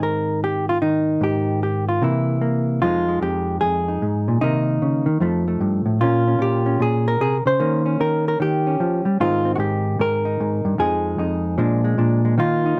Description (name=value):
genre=solo jazz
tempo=151 BPM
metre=4/4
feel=swing 65% on 8ths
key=F minor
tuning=A4 = 440 Hz
part: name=hollow-body jazz guitar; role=solo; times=0.0-12.8 s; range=F2 to C5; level=-20 LUFS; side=equal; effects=none
room=moderate club reverb, RT60 0.5 s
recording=none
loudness=-20 LUFS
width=mono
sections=0.0-2.8 A section; 2.8-12.8 B section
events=none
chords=0.0 Abmaj9; 2.0 C7; 2.8 Fm9; 4.4 Cm7; 5.2 F7; 6.0 Bbm7; 7.6 Eb7; 9.2 Abmaj7; 10.8 Fm7; 11.6 Bb7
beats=0.02 0.42 0.82 | 1.22 1.62 2.02 2.42 | 2.82 3.22 3.62 4.02 | 4.42 4.81 5.21 5.61 | 6.01 6.41 6.81 7.20 | 7.60 8.00 8.40 8.80 | 9.19 9.59 9.99 10.39 | 10.79 11.18 11.58 11.98 | 12.38 12.78